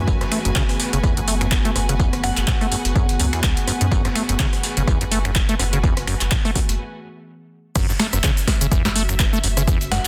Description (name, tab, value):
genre	acid house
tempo	125 BPM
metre	4/4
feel	swing 56% on 16ths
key	F# minor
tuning	A4 = 440 Hz
part	warbly tape-like pad	sustained chords	0.0-10.1 s	E3 to G#4	-33 LUFS	equal	chorus, built-in reverb, sidechain pumping
part	acid bass, square	riff	0.0-10.0 s	E2 to A3	-28 LUFS	equal	tape echo
part	warm sub bass	bass	0.0-10.1 s	F#1 to F#2	-26 LUFS	equal	sidechain pumping
part	bright symphonic string section	texture	0.0-10.1 s	F#4 to G#5	-34 LUFS	equal	sidechain pumping
part	dusty soul sampler-style drum kit	drums	0.1-10.0 s	hi-hat, snare drum, tambourine	-34 LUFS	equal	overdrive, sidechain pumping on perc, high-pass filter on perc, high-pass filter on snare, sidechain pumping on hats, high-pass filter on hats, high-pass filter on room
part	electronic kick drum	drums	0.1-9.8 s	none	-22 LUFS	equal	overdrive
part	booming analog drum machine	drums	0.2-10.1 s	crash cymbal, finger snaps, handclaps, hi-hat, rim click, shaker, snare drum	-26 LUFS	equal	overdrive
part	glassy synth bell	melody	2.2-2.6, 9.9-10.1 s	F#5	-33 LUFS	equal	chorus, dub echo
room	light reverb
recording	dense, heavily limited modern master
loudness	-20 LUFS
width	mono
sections	0.0-7.8 A section; 7.8-10.1 B section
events	filter sweep on acid bass 0.0-7.8; break 6.8-7.8; drop 7.8-10.1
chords	0.0 F#m7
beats	| 0.08 0.56 1.04 1.52 | 2.00 2.48 2.96 3.44 | 3.92 4.40 4.88 5.36 | 5.84 6.32 6.80 7.28 | 7.76 8.24 8.72 9.20 | 9.68